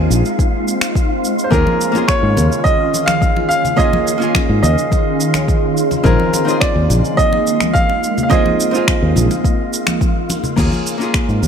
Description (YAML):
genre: sunset chillout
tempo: 106 BPM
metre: 4/4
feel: straight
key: unclear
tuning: A4 = 440 Hz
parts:
  - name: bright grand piano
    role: melody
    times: 0.0-10.0 s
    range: Bb4 to F5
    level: -18 LUFS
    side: right 2 dB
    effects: digital delay
  - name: archtop guitar, miked and amplified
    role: accompaniment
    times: 0.0-11.5 s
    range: Bb3 to Ab4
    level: -22 LUFS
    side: moving between left 5 dB and right 6 dB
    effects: auto-pan, tape echo
  - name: shimmering ambient pad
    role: sustained chords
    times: 0.0-10.5 s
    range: Eb3 to Ab4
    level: -20 LUFS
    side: equal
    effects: chorus, built-in reverb, phaser
  - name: fingered electric bass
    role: bass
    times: 0.0-11.5 s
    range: Bb1 to Ab2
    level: -14 LUFS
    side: equal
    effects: none
  - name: wind-like tuned noise texture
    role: texture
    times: 0.0-11.5 s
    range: F4 to Bb5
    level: -26 LUFS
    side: left 1 dB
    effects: built-in reverb
  - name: smooth R&B drum kit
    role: drums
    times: 0.1-11.5 s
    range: crash cymbal, finger snaps, shaker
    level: -22 LUFS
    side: right 1 dB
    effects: none
  - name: electronic kick drum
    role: drums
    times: 0.4-11.3 s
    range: none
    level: -17 LUFS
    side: equal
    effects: overdrive
  - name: congas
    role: percussion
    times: 1.7-11.5 s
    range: none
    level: -24 LUFS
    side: left 1 dB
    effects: none
room: light reverb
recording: none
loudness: -13 LUFS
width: side -7 dB against mid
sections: 0.0-10.6 A section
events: none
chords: 0.0 Bb9sus4 (rootless); 1.5 Eb9sus4; 6.0 Bb9sus4; 10.6 Eb9sus4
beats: 0.39 0.95 | 1.52 2.08 2.65 3.22 | 3.78 4.35 4.92 5.48 | 6.05 6.61 7.18 7.75 | 8.31 8.88 9.44 10.01 | 10.58 11.14